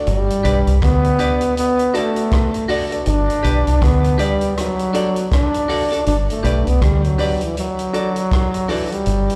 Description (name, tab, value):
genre	roots reggae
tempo	80 BPM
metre	4/4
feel	swing 60% on 16ths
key	G major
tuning	A4 = 441 Hz
part	warm upright piano	stabs	0.0-8.9 s	D4 to D5	-27 LUFS	equal	plate reverb, slapback echo
part	clear trombone	melody	0.1-9.4 s	E3 to D4	-22 LUFS	equal	tape echo, plate reverb, slapback echo
part	deep dub fingered electric bass	bass	0.1-9.3 s	G1 to D2	-19 LUFS	equal	none
part	vintage drum kit	drums	0.1-9.4 s	hi-hat, kick drum, rim click	-25 LUFS	equal	none
part	clean electric guitar	accompaniment	0.4-8.8 s	F#4 to D5	-30 LUFS	equal	tape echo, plate reverb, slapback echo
room	light reverb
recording	live gig heard through the venue's PA, recital hall reverb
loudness	-18 LUFS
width	mono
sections	0.0-6.1 A section; 6.1-9.4 B section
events	none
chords	0.1 G; 1.6 D; 3.1 G; 4.6 D; 6.1 G; 7.6 D